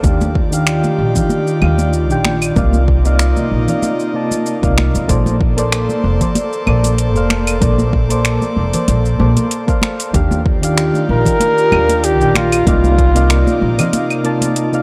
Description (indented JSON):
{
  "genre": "sunset chillout",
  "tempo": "95 BPM",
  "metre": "4/4",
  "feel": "swing 54% on 16ths",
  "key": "Bb major",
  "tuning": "A4 = 439 Hz",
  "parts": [
    { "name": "soft electric-piano-like synth keys", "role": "accompaniment", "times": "0.0-14.8 s", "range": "C3 to A5", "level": "-22 LUFS", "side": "equal", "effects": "chorus, tremolo, low-pass filter, tape echo, shimmer reverb" },
    { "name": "airy breathy pad", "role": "sustained chords", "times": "0.0-14.8 s", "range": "C3 to D5", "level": "-23 LUFS", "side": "equal", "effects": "chorus, shimmer reverb" },
    { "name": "upright bass", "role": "bass", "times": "0.0-13.8 s", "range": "F1 to Eb2", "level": "-18 LUFS", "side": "equal", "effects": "none" },
    { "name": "deep house drum kit", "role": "drums", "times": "0.0-14.8 s", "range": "claves, finger snaps, hi-hat, shaker", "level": "-23 LUFS", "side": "equal", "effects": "overdrive" },
    { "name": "electronic kick drum", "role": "drums", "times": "0.0-13.1 s", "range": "none", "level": "-19 LUFS", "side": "equal", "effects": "overdrive" },
    { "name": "congas", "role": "percussion", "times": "0.2-14.5 s", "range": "none", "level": "-25 LUFS", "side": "equal", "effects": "none" },
    { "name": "warm flugelhorn", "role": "melody", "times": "11.1-13.9 s", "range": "F4 to Bb4", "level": "-18 LUFS", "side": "equal", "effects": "vintage 12-bit sampler grit, tape echo, shimmer reverb" }
  ],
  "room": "light reverb",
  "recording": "dry, gritty hardware recording",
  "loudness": "-15 LUFS",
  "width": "mono",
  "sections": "0.0-14.8 A section",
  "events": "filter sweep on synth keys 0.0-14.8",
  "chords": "0.0 Ebmaj9; 2.6 Cm11; 5.1 Bbmaj9; 10.1 Ebmaj9; 12.7 Cm11"
}